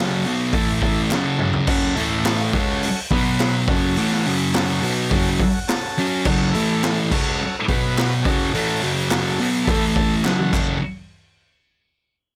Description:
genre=garage rock duo or trio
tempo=105 BPM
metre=4/4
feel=straight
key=F# minor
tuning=A4 = 440 Hz
part: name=overdriven combo organ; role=sustained chords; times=0.0-10.8 s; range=A3 to A5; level=-31 LUFS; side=equal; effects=none
part: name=thick fuzz guitar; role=riff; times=0.0-10.8 s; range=F#2 to F#4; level=-22 LUFS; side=equal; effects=distortion
part: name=raw garage drum kit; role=drums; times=0.2-10.7 s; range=crash cymbal, hi-hat, kick drum, snare drum, toms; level=-25 LUFS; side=equal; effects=none
part: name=group handclap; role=percussion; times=1.1-10.8 s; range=none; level=-32 LUFS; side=equal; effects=none
room=light reverb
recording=none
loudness=-20 LUFS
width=mono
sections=0.0-1.7 A section; 1.7-10.8 A section; 10.8-12.4 B section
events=drum fill 1.1-1.7, 10.2-10.8; transistor combo organ fill 5.1-6.3, 9.7-10.8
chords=0.0 F#m; 0.5 A5; 1.1 F#m; 2.0 A5; 2.5 F#m; 3.1 B5; 3.7 F#m; 6.5 A5; 7.1 F#m; 7.7 B5; 8.2 F#m; 9.7 A5; 10.2 F#m; 10.8 N.C.

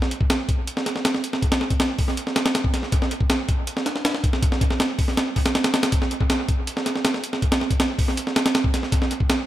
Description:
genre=drum and bass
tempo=160 BPM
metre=4/4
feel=straight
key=none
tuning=none
part: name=breakbeat sampler-style drum kit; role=drums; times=0.0-9.4 s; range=hi-hat, kick drum, snare drum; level=-20 LUFS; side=equal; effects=dub echo
room=light reverb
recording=echo-heavy mix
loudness=-20 LUFS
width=side -14 dB against mid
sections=0.0-9.5 A section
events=none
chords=none

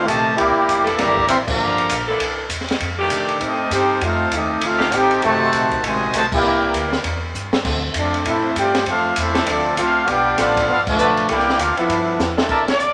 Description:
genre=jazz, big band swing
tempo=198 BPM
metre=4/4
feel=swing 61% on 8ths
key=C major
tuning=A4 = 442 Hz
part: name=clear trumpet section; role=melody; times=0.0-12.3 s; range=C4 to C6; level=-22 LUFS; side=equal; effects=none
part: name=warm trombone section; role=second line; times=0.0-12.3 s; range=C3 to G4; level=-22 LUFS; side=equal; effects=none
part: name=clear saxophone section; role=sustained chords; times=0.0-12.8 s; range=C2 to B4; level=-27 LUFS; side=equal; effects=none
part: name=upright bass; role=bass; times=0.0-12.9 s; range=F1 to C3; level=-32 LUFS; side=equal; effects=none
part: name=open jazz drum kit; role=drums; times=0.1-12.9 s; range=crash cymbal, hi-hat, kick drum, ride cymbal, snare drum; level=-26 LUFS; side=equal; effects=none
part: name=mellow trumpet section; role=stabs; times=12.5-12.6 s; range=Bb4 to A5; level=-22 LUFS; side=equal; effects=none
part: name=clear saxophone section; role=melody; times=12.7-12.9 s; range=D5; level=-19 LUFS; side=equal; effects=none
room=wet large studio reverb, RT60 1.2 s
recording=none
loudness=-18 LUFS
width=mono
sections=0.0-12.5 A section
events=band accent 1.4, 6.3, 10.8, 12.6; drum fill 7.3-7.6, 12.2-12.5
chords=0.4 C13; 1.6 Gm7; 2.2 C13; 2.8 F13; 5.2 F#dim7; 6.4 C9; 7.6 Dm7; 10.1 G9; 11.3 C13

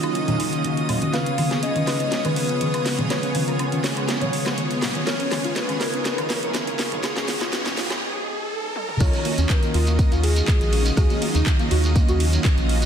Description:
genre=progressive house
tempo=122 BPM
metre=4/4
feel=straight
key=Eb minor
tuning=A4 = 440 Hz
part: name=shimmering ambient pad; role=sustained chords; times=0.0-12.9 s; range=Db3 to F5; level=-31 LUFS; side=equal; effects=chorus, built-in reverb, sidechain pumping
part: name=soft round pluck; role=arpeggios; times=0.0-12.8 s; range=Bb3 to Db5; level=-30 LUFS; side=equal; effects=ensemble chorus, sidechain pumping, digital delay
part: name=soft supersaw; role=stabs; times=0.0-12.9 s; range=Db3 to Eb5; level=-27 LUFS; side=right 1 dB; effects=ensemble chorus, sidechain pumping, digital delay
part: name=house drum kit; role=drums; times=0.0-12.9 s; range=crash cymbal, handclaps, hi-hat, ride cymbal, rim click, snare drum, toms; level=-28 LUFS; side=equal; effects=studio reverb
part: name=woodblock and congas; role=percussion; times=0.0-8.0 s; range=none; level=-28 LUFS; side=left 1 dB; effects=sidechain pumping on perc, studio reverb
part: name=drifting glass-harmonics texture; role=texture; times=0.0-12.9 s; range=Eb6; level=-36 LUFS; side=right 2 dB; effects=chorus, built-in reverb, sidechain pumping
part: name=soft octave-layered synth lead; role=melody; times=1.1-11.4 s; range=Ab4 to F5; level=-30 LUFS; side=left 2 dB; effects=chorus, cassette tape, ping-pong delay
part: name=riser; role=sound effects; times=4.7-9.0 s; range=none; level=-34 LUFS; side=right 1 dB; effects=none
part: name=round analog bass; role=bass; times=9.0-12.9 s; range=Bb1 to Eb2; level=-20 LUFS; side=equal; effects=sidechain pumping
part: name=electronic kick drum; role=drums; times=9.0-12.6 s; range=none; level=-19 LUFS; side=equal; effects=studio reverb
part: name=shekere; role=percussion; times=9.0-12.9 s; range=none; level=-34 LUFS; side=right 2 dB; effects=none
room=moderate lush hall reverb, RT60 1.5 s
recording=dense, heavily limited modern master, high-pass filter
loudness=-19 LUFS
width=side -8 dB against mid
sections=0.0-9.0 A section; 9.0-12.9 B section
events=build-up 0.0-9.0; filter sweep on ambient pad 0.0-9.0; filter sweep 0.0-9.0; drum fill 1.1-8.0, 8.8; riser 4.7-9.0; break 8.0-9.0; drop 9.0-12.9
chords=0.0 Ebm9; 1.1 Db7; 9.0 Ebm9

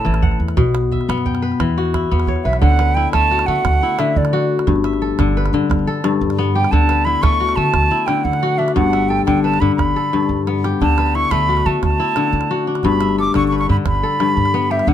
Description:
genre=west african traditional, West African string and xylophone music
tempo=117 BPM (dotted quarters)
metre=12/8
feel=straight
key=D major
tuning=A4 = 440 Hz
part: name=hollow concert flute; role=melody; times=0.0-14.9 s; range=D5 to D6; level=-18 LUFS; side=right 3 dB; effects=none
part: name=kora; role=arpeggios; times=0.0-14.9 s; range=G2 to G5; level=-18 LUFS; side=left 5 dB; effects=none
part: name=upright bass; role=bass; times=0.1-14.9 s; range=G1 to D3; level=-20 LUFS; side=right 1 dB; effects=none
part: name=calabash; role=percussion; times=0.1-14.9 s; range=none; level=-22 LUFS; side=right 4 dB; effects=none
room=little or no reverb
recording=close, detailed microphones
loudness=-14 LUFS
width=side -10 dB against mid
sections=0.0-2.6 A section; 2.6-14.9 B section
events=drum fill 10.1-10.8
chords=0.0 A5; 0.6 B5; 1.6 Em; 2.6 D; 4.7 G; 6.7 D; 8.8 G; 10.8 D; 12.8 G

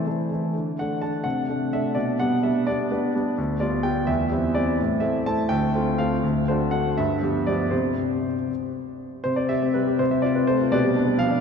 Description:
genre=classical-period piano sonatina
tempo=83 BPM (dotted quarters)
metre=6/8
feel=rubato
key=G major, C major from 3.4 s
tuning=A4 = 438 Hz
part: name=clear grand piano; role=solo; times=0.0-11.4 s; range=D2 to A5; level=-21 LUFS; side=equal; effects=none
room=wet church reverb, RT60 3.7 s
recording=dark, warm production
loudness=-21 LUFS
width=side -6 dB against mid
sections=0.0-9.3 A section; 9.3-11.4 B section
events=none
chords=0.0 A5; 0.5 D5; 1.3 D7/C; 2.0 G/B; 3.4 G7/D; 4.1 C/E; 4.8 Am; 5.5 Dm7; 6.2 D; 7.0 G7; 7.7 C5; 10.0 F/C; 10.7 G7/B

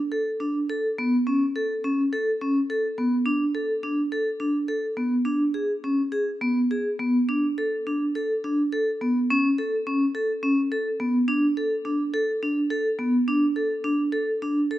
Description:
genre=contemporary instrumental, contemporary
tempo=210 BPM (eighths)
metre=7/8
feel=straight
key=unclear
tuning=A4 = 438 Hz
part: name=vibraphone with medium hard mallets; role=solo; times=0.1-14.8 s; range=B3 to A4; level=-22 LUFS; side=equal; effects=none
room=moderate concert hall reverb, RT60 2.0 s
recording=close, detailed microphones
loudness=-22 LUFS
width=side -14 dB against mid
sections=0.0-14.8 A section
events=none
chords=none

